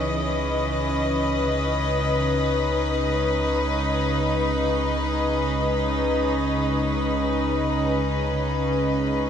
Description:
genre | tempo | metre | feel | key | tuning
ambient | free time | none | none | C# minor | A4 = 439 Hz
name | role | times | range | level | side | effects
rich chamber string section | sustained chords | 0.0-9.3 s | C#3 to D#5 | -22 LUFS | left 1 dB | shimmer reverb
overdriven tine electric piano | arpeggios | 0.0-9.3 s | D#4 to C#5 | -41 LUFS | right 1 dB | none
warm sub bass | bass | 0.0-9.3 s | C#2 | -29 LUFS | right 1 dB | none
overtone-sweeping drone | drone | 0.0-9.3 s | C#3 to G#3 | -33 LUFS | right 2 dB | chorus, built-in reverb
room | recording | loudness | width
wet concert hall reverb, RT60 2.2 s | dark, warm production | -21 LUFS | side -8 dB against mid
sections
0.0-9.3 A section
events
fade-in on synth drone 0.0-9.3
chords
0.0 C#m7

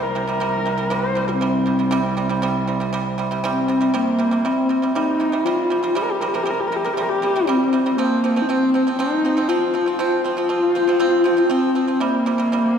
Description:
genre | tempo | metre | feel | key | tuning
mongolian traditional, Mongolian folk | 119 BPM | 4/4 | straight | C yu mode | A4 = 440 Hz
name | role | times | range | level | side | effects
dark horsehead fiddle | melody | 0.0-12.8 s | Bb3 to C5 | -19 LUFS | left 1 dB | none
pipa | arpeggios | 0.0-12.7 s | C3 to C4 | -23 LUFS | right 3 dB | none
warm cello | drone | 0.0-4.0 s | C2 | -26 LUFS | right 2 dB | none
room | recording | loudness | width
wet concert hall reverb, RT60 2.3 s | heard from further back in the room | -17 LUFS | side -7 dB against mid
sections
0.0-3.9 A section; 3.9-12.8 B section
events
none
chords
0.0 C5; 8.0 F5; 12.0 C5

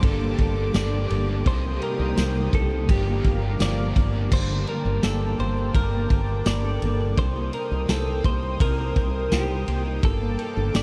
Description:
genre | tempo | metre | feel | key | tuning
dream pop | 84 BPM | 4/4 | straight | G minor | A4 = 440 Hz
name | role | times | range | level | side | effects
clean electric guitar | melody | 0.0-10.8 s | G4 to D5 | -33 LUFS | equal | analog delay
crunchy overdriven guitar | accompaniment | 0.0-4.8 s | C3 to A4 | -34 LUFS | equal | harmonic tremolo, subtle chorus
warm analog pad | sustained chords | 0.0-10.8 s | Bb3 to Eb6 | -37 LUFS | equal | chorus
fingerpicked twelve-string acoustic guitar | arpeggios | 0.0-10.8 s | G2 to Bb4 | -34 LUFS | equal | lush chorus, analog delay
woody fretless electric bass | bass | 0.0-10.8 s | G1 to C2 | -28 LUFS | equal | ensemble chorus
vintage drum kit | drums | 0.0-10.8 s | crash cymbal, kick drum, ride cymbal, snare drum, tambourine | -27 LUFS | equal | none
room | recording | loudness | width
moderate huge ambient reverb, RT60 7.6 s | dreamy mix soaked in reverb, lossy compression artefacts | -24 LUFS | mono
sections
0.0-4.3 A section; 4.3-10.8 B section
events
none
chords
0.0 Gmadd9; 1.5 Cm7; 2.9 Gm7; 4.3 Gmadd9; 7.2 Cm7; 10.0 Gmadd9

